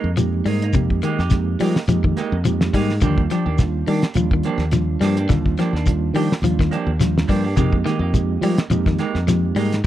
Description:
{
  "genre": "afrobeat",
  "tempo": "105 BPM",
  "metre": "4/4",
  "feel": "swing 55% on 16ths",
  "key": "F dorian",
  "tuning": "A4 = 440 Hz",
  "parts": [
    { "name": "semi-hollow electric guitar", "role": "stabs", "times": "0.0-9.8 s", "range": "F3 to G4", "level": "-26 LUFS", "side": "right 7 dB", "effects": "spring reverb" },
    { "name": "modern bright fingered electric bass", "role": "bass", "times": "0.0-9.9 s", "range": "Eb2 to F3", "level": "-21 LUFS", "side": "equal", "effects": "none" },
    { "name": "mellow reed electric piano", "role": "accompaniment", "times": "0.2-9.6 s", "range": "G3 to G4", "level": "-26 LUFS", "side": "right 11 dB", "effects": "fast tremolo" },
    { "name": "electric guitar at the edge of break-up", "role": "arpeggios", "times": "0.2-9.7 s", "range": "C3 to G3", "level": "-22 LUFS", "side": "left 6 dB", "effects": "none" },
    { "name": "cloth-damped thuddy drum kit", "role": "drums", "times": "0.2-9.8 s", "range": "hi-hat, kick drum, snare drum", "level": "-22 LUFS", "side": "equal", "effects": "none" },
    { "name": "shekere", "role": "percussion", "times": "0.2-9.7 s", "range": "none", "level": "-21 LUFS", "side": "left 2 dB", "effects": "none" }
  ],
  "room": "little or no reverb",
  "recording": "dry, close 1970s-style studio recording",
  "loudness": "-17 LUFS",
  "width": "side -12 dB against mid",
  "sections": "0.0-9.9 A section",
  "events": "none",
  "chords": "0.0 Fm11; 3.0 Ebmaj9; 7.6 Fm11"
}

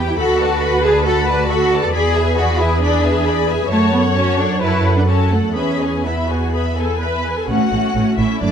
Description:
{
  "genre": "quick classical-period movement for string orchestra",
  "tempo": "122-139 BPM",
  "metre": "4/4",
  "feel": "rubato",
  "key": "A major",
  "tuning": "A4 = 440 Hz",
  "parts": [
    { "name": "rich symphonic violin section", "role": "melody", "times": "0.0-8.5 s", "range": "D5 to B5", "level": "-26 LUFS", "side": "left 6 dB", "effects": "none" },
    { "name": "clear symphonic violin section", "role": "second line", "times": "0.0-8.5 s", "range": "D4 to G5", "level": "-23 LUFS", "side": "left 5 dB", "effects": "none" },
    { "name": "rich symphonic viola section", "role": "accompaniment", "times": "0.0-8.5 s", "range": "A3 to C#5", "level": "-21 LUFS", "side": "equal", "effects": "none" },
    { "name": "clear symphonic double bass section", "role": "bass", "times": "0.0-8.5 s", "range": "F#1 to F#2", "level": "-19 LUFS", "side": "right 2 dB", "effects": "none" },
    { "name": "rich symphonic cello section", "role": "bass", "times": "0.0-8.5 s", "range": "F#2 to B4", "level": "-19 LUFS", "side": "right 1 dB", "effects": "none" }
  ],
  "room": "light reverb",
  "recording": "close, detailed microphones",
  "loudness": "-14 LUFS",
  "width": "side -8 dB against mid",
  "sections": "0.0-7.5 A section; 7.5-8.5 B section",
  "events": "none",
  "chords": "0.2 Bm7/D; 1.9 E7; 3.7 F#m; 5.6 E; 7.5 A"
}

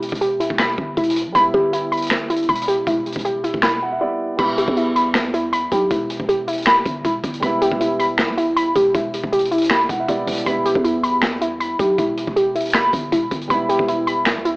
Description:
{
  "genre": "hip hop, trap",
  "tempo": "158 BPM",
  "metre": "4/4",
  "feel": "half-time",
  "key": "E minor",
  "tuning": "A4 = 442 Hz",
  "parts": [
    { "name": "dark grand piano", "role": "accompaniment", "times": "0.0-14.6 s", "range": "G3 to F#5", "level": "-26 LUFS", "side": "right 1 dB", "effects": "none" },
    { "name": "warbly dusty pluck", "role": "arpeggios", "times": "0.0-14.6 s", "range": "E4 to B5", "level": "-18 LUFS", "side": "equal", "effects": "chorus, phaser, analog delay" },
    { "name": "growling 808-style bass", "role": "bass", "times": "0.0-14.6 s", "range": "E1 to E2", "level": "-28 LUFS", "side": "equal", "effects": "none" },
    { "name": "vintage drum kit", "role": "drums", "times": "0.0-14.5 s", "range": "crash cymbal, finger snaps, hi-hat, kick drum, snare drum", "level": "-23 LUFS", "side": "equal", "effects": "cassette tape" }
  ],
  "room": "moderate studio reverb, RT60 0.5 s",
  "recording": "home recording on cassette, AM radio sound",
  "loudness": "-16 LUFS",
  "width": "side -24 dB against mid",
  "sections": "0.0-4.4 A section; 4.4-14.6 B section",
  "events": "break 4.0-4.4",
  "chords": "0.0 Em"
}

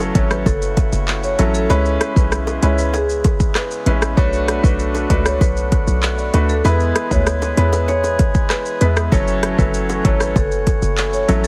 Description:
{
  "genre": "dancehall",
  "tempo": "97 BPM",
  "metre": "4/4",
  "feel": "straight",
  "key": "F# minor",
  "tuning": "A4 = 440 Hz",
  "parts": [
    { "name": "clear baby grand piano", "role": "accompaniment", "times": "0.0-11.5 s", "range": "F#3 to B4", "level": "-23 LUFS", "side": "equal", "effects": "sidechain pumping" },
    { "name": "hand-pumped harmonium", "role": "sustained chords", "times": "0.0-11.5 s", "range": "C#3 to G#4", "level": "-29 LUFS", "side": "equal", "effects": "sidechain pumping" },
    { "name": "short 808-style bass", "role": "bass", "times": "0.0-11.5 s", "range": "F#1 to E2", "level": "-21 LUFS", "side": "equal", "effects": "none" },
    { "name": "afro-pop drum kit", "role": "drums", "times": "0.0-11.5 s", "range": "handclaps, hi-hat, kick drum, rim click, shaker", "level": "-21 LUFS", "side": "equal", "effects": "none" },
    { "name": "bongos", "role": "percussion", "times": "0.0-11.4 s", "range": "none", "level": "-31 LUFS", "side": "equal", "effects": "none" },
    { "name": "marimba with medium hard mallets", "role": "melody", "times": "0.2-11.5 s", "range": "G#4 to D5", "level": "-26 LUFS", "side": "equal", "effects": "digital delay" }
  ],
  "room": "little or no reverb",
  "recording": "heavily compressed radio sound",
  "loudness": "-17 LUFS",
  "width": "mono",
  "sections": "0.0-11.5 A section",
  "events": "none",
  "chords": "0.0 F#m7; 1.7 C#m7; 4.2 Bm7; 6.6 E; 9.1 F#m7"
}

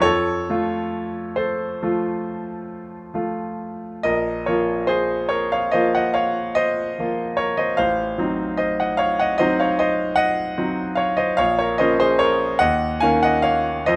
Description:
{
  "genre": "classical, romantic nocturne for solo piano",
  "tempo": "43-51 BPM (dotted quarters)",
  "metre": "9/8",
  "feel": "rubato",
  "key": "Bb minor",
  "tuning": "A4 = 439 Hz",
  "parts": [
    { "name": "bright concert grand piano", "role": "solo", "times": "0.0-14.0 s", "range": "A1 to Ab5", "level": "-21 LUFS", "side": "equal", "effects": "none" }
  ],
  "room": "light reverb",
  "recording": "none",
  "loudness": "-21 LUFS",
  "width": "mono",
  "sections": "0.0-14.0 A section",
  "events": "none",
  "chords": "0.0 F; 4.0 Bbm; 7.8 Adim7; 11.4 Bbm; 12.6 Eb5"
}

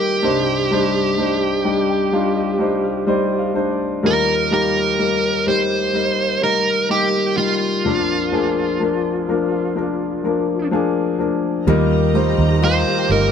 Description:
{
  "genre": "pop ballad",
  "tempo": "63 BPM",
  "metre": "4/4",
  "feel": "straight",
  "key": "Eb major",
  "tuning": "A4 = 440 Hz",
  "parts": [
    { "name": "dark smooth lead guitar", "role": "melody", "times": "0.0-13.3 s", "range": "F4 to C5", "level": "-20 LUFS", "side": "right 4 dB", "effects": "overdrive" },
    { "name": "clear grand piano", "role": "accompaniment", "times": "0.0-13.3 s", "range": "Bb1 to G5", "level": "-18 LUFS", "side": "left 3 dB", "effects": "none" },
    { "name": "clear studio string section", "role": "sustained chords", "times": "11.7-13.3 s", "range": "G4 to Bb5", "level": "-26 LUFS", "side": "left 1 dB", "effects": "none" },
    { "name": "picked steel-string acoustic guitar", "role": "arpeggios", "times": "11.7-13.3 s", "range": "Eb3 to G4", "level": "-24 LUFS", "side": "right 8 dB", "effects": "none" },
    { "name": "vintage muted fingered electric bass", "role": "bass", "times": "11.7-13.3 s", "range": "G1 to Eb2", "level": "-18 LUFS", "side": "right 2 dB", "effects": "none" }
  ],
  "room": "moderate stone room reverb, RT60 1.1 s",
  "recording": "band playing live in one room",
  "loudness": "-16 LUFS",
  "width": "side -7 dB against mid",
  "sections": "0.0-11.7 A section; 11.7-13.3 B section",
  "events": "grand piano fill 1.2-4.1",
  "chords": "0.2 Cmadd9; 4.1 Eb; 7.9 Bb; 11.7 Eb"
}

